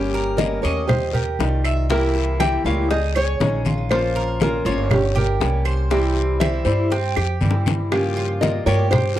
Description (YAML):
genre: latin, Cuban son and guajira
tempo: 120 BPM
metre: 4/4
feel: straight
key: unclear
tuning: A4 = 441 Hz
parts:
  - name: nylon-string guitar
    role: melody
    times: 0.0-9.2 s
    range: G4 to G5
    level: -24 LUFS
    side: left 1 dB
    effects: none
  - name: nylon-string guitar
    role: second line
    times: 0.0-9.2 s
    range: Db4 to E5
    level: -30 LUFS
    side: right 12 dB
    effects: none
  - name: fingerpicked old ladder-braced acoustic guitar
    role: accompaniment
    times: 0.0-9.0 s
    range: C3 to C5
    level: -26 LUFS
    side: left 4 dB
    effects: none
  - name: upright bass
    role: bass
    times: 0.0-9.2 s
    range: G1 to G2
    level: -22 LUFS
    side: equal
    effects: none
  - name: Cuban tres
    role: arpeggios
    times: 0.1-9.2 s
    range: C4 to E5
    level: -28 LUFS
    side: right 6 dB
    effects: slapback echo
  - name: congas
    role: percussion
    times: 0.1-9.2 s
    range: none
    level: -24 LUFS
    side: equal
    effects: none
  - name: bongos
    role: percussion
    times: 0.4-9.2 s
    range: none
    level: -27 LUFS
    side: left 7 dB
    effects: none
  - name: guiro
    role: percussion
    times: 0.4-9.2 s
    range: none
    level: -35 LUFS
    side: left 15 dB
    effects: none
  - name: claves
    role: percussion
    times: 0.9-9.2 s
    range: none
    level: -30 LUFS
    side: right 17 dB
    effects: none
room: small room ambience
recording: dry, close 1970s-style studio recording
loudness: -18 LUFS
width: side -12 dB against mid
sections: 0.0-9.2 A section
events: drum fill 7.2-7.9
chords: 0.0 Gdim; 0.9 Ebadd9; 1.9 C7; 2.9 Dbsus2; 3.9 Bbmadd9; 4.9 Gdim; 5.9 C; 7.9 Gm7b5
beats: 0.39 0.90 1.40 | 1.90 2.40 2.90 3.40 | 3.91 4.41 4.91 5.41 | 5.91 6.41 6.92 7.42 | 7.92 8.42 8.92